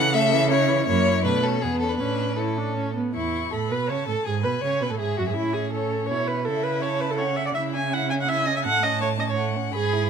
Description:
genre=quick classical-period movement for string quartet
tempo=164 BPM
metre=3/4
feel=straight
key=A major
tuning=A4 = 440 Hz
part: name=rich violin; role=melody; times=0.0-10.1 s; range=B3 to C#6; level=-30 LUFS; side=left 12 dB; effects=none
part: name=clear violin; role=second line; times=0.0-10.1 s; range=A3 to F#5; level=-27 LUFS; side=left 3 dB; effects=none
part: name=clear viola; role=accompaniment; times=0.0-10.1 s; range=C#3 to G#5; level=-26 LUFS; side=right 2 dB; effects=none
part: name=clear cello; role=bass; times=0.0-10.1 s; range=E2 to C#3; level=-27 LUFS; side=right 6 dB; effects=none
room=light reverb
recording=close, detailed microphones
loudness=-21 LUFS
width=side -7 dB against mid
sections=0.0-3.1 A section; 3.1-10.1 A section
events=none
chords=0.0 A/C#; 0.9 F#7; 1.2 Bm7; 1.6 E; 2.0 A; 3.1 A/E; 4.3 E/G#; 5.4 A; 6.5 A/C#; 8.7 F#m/A

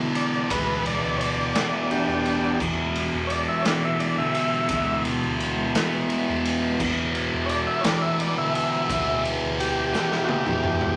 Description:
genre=psychedelic rock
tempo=57 BPM (dotted quarters)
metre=6/8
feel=straight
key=E minor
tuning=A4 = 439 Hz
part: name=thick fuzz guitar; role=riff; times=0.0-11.0 s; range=E2 to E3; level=-28 LUFS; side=equal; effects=distortion, phaser
part: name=hollow-body short-scale fingered electric bass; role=bass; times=0.0-11.0 s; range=D2 to E3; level=-35 LUFS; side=equal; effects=none
part: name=overdriven combo organ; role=melody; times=0.2-11.0 s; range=D4 to E5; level=-29 LUFS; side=equal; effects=none
part: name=raw garage drum kit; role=drums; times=0.2-11.0 s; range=crash cymbal, kick drum, ride cymbal, snare drum, toms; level=-30 LUFS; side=equal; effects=none
part: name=tube shaker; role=percussion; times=0.3-10.6 s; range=none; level=-54 LUFS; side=equal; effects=none
room=moderate large studio reverb, RT60 1.0 s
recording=none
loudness=-24 LUFS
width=mono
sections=0.0-11.0 A section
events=transistor combo organ solo 0.0-11.0; drum fill 9.9-11.0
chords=0.0 Em

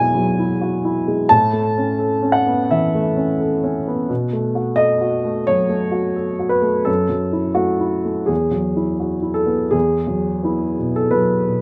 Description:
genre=neoclassical minimalist piano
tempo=86 BPM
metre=4/4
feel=rubato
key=E major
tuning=A4 = 436 Hz
part: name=dark upright piano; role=solo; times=0.0-11.6 s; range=E2 to A5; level=-19 LUFS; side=equal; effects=none
room=light reverb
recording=recorded outdoors, with no room sound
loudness=-19 LUFS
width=mono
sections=0.0-9.7 A section; 9.7-11.6 B section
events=none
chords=0.0 Eadd9; 1.3 Aadd9; 4.1 B7; 6.9 F#m7; 8.3 Eadd9

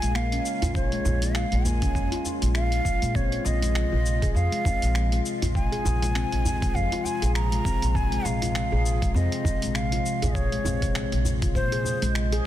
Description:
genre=organic downtempo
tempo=100 BPM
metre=4/4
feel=swing 57% on 16ths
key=unclear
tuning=A4 = 440 Hz
part: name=breathy hollow bansuri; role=melody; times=0.0-12.1 s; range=C5 to Bb5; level=-30 LUFS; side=equal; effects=tape echo
part: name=warbly tape-like pad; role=sustained chords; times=0.0-12.5 s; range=C3 to F4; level=-34 LUFS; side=left 3 dB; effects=chorus, built-in reverb, sidechain pumping
part: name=handpan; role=arpeggios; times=0.0-12.4 s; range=Ab3 to Ab4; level=-31 LUFS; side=left 2 dB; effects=tape echo
part: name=upright bass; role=bass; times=0.0-12.4 s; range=Bb1 to Bb2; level=-26 LUFS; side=equal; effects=sidechain pumping
part: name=dusty soul sampler-style drum kit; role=drums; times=0.0-12.4 s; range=finger snaps, hi-hat, shaker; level=-34 LUFS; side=equal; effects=overdrive
part: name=djembe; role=percussion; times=0.6-12.1 s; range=none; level=-32 LUFS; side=right 2 dB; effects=none
part: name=electronic kick drum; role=drums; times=0.8-11.7 s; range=none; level=-27 LUFS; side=equal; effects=overdrive
room=small room reverb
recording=dense, heavily limited modern master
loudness=-22 LUFS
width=side -12 dB against mid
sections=0.0-12.5 A section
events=none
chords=0.0 Bbm7; 3.2 Fm/Bb

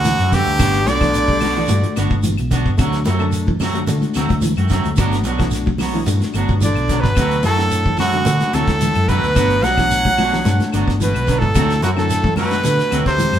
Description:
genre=afrobeat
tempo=110 BPM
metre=4/4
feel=straight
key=D mixolydian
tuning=A4 = 440 Hz
part: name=brilliant trumpet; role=melody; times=0.0-2.0, 6.6-13.4 s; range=F#4 to F#5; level=-19 LUFS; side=right 2 dB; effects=none
part: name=breathy alto saxophone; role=second line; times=0.0-2.0, 6.6-13.4 s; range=F#4 to F#5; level=-28 LUFS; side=right 3 dB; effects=none
part: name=raspy baritone saxophone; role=second line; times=0.0-2.0, 6.6-13.4 s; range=F#2 to F#3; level=-25 LUFS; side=left 3 dB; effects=none
part: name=overdriven reed electric piano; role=accompaniment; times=0.0-13.3 s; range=A3 to A4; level=-27 LUFS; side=left 4 dB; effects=none
part: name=clean electric guitar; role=arpeggios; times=0.0-13.4 s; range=C3 to G3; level=-26 LUFS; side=left 1 dB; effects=none
part: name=hollow-body short-scale fingered electric bass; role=bass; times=0.0-13.4 s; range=G1 to D3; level=-20 LUFS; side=equal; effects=none
part: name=congas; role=percussion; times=0.0-13.3 s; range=none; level=-25 LUFS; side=left 2 dB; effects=none
part: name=shekere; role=percussion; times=0.0-13.4 s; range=none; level=-29 LUFS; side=right 4 dB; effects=none
part: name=damped 70s drum kit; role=drums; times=0.1-13.4 s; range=hi-hat, kick drum, snare drum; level=-23 LUFS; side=equal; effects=none
part: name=clean electric guitar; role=stabs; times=0.2-13.1 s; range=F#3 to F#4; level=-25 LUFS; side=right 3 dB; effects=none
part: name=claves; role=percussion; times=0.2-13.4 s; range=none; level=-37 LUFS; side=left 9 dB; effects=none
room=moderate studio reverb, RT60 0.8 s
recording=band playing live in one room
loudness=-14 LUFS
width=side -10 dB against mid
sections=0.0-13.4 A section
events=none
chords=0.0 D7; 0.6 Gmaj7; 2.8 D7; 5.0 Gmaj7; 7.2 D7; 9.4 Gmaj7; 11.5 D7

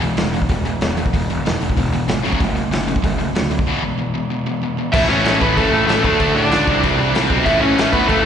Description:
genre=punk rock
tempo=190 BPM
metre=4/4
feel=straight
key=unclear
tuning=A4 = 440 Hz
part: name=distorted electric guitar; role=riff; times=0.0-8.3 s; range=E2 to D4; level=-22 LUFS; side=left 11 dB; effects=overdrive, slapback echo
part: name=sludgy distorted guitar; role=riff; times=0.0-8.3 s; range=A2 to F#4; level=-23 LUFS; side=right 10 dB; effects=overdrive
part: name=fuzz picked electric bass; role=bass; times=0.0-8.2 s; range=E1 to A2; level=-22 LUFS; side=equal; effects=overdrive
part: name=raw garage drum kit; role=drums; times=0.0-8.2 s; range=crash cymbal, hi-hat, kick drum, snare drum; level=-21 LUFS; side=equal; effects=none
part: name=overdriven electric guitar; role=melody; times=4.9-8.2 s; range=A3 to E5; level=-18 LUFS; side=equal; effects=slapback echo, tape echo
part: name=tight distorted guitar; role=riff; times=4.9-8.3 s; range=A2 to D4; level=-22 LUFS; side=left 1 dB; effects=distortion
room=light reverb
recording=live gig heard through the venue's PA, recital hall reverb, nothing above 10.9 kHz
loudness=-15 LUFS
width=side -8 dB against mid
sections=0.0-4.9 A section; 4.9-8.3 B section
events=break 3.7-4.9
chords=0.0 E; 2.2 F#m; 3.7 E; 4.9 A; 6.0 D; 6.7 C; 7.5 A

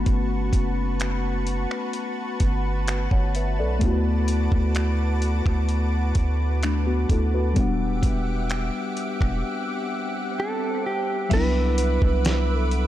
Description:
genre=contemporary R&B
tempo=64 BPM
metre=4/4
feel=straight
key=D major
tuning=A4 = 440 Hz
part: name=muted felt-like synth keys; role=accompaniment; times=0.0-12.9 s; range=F#3 to F#5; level=-28 LUFS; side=left 4 dB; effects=chorus
part: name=lush unison pad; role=sustained chords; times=0.0-12.9 s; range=F#4 to D6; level=-31 LUFS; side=equal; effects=chorus
part: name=long sustained 808-style bass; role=bass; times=0.0-12.9 s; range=E1 to D2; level=-23 LUFS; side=equal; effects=none
part: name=dusty soul sampler-style drum kit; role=drums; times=0.1-12.9 s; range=crash cymbal, finger snaps, hi-hat, kick drum, snare drum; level=-24 LUFS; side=equal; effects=none
part: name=swell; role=sound effects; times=9.6-11.3 s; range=none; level=-36 LUFS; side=right 5 dB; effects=none
part: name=direct-recorded clean electric guitar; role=melody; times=10.4-12.9 s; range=G4 to B4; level=-26 LUFS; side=right 2 dB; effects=digital delay
part: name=glassy wavetable pluck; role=texture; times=11.3-12.9 s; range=E5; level=-39 LUFS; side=right 4 dB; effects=none
room=digital ambience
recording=dark, warm production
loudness=-21 LUFS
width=side -13 dB against mid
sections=0.0-11.3 A section; 11.3-12.9 B section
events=break 9.4-11.3; swell 9.6-11.3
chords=0.0 Gmaj9#11; 3.8 D6; 7.6 Em9; 11.3 Cmaj9#11

